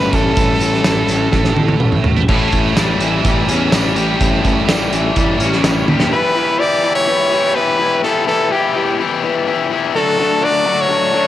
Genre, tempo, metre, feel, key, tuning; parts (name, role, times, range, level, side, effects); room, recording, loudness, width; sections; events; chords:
indie rock; 125 BPM; 4/4; straight; A4 = 440 Hz
brilliant trumpet; melody; 0.0-2.1, 6.1-11.3 s; G4 to D5; -17 LUFS; right 1 dB; cassette tape
cranked stack guitar; riff; 0.0-11.3 s; A2 to G4; -17 LUFS; left 6 dB; overdrive, cassette tape
scooped high-gain guitar; riff; 0.0-6.1 s; A2 to A4; -20 LUFS; right 6 dB; distortion, ensemble chorus, cassette tape, tape echo
fuzz fingered electric bass; bass; 0.0-6.1 s; A1 to E2; -20 LUFS; right 1 dB; overdrive
loose indie drum kit; drums; 0.1-6.1 s; crash cymbal, hi-hat, kick drum, snare drum, tambourine, toms; -17 LUFS; right 1 dB
light reverb, small room ambience; home recording on cassette; -12 LUFS; side -12 dB against mid
0.0-2.3 A section; 2.3-6.1 B section; 6.1-11.3 C section
drum fill 1.3-2.3, 5.9
0.0 A7; 6.1 Em; 9.9 D